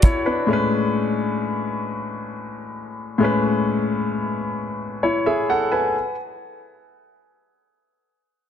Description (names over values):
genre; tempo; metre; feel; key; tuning
R&B; 44 BPM (dotted quarters); 6/8; straight; A major; A4 = 444 Hz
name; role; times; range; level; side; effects
bright concert grand piano; accompaniment; 0.0-6.1 s; A2 to G#5; -20 LUFS; left 2 dB; none
room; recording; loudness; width
light reverb, studio reverb; dense, heavily limited modern master; -20 LUFS; side -9 dB against mid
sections
0.0-5.9 A section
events
none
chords
0.5 Amaj9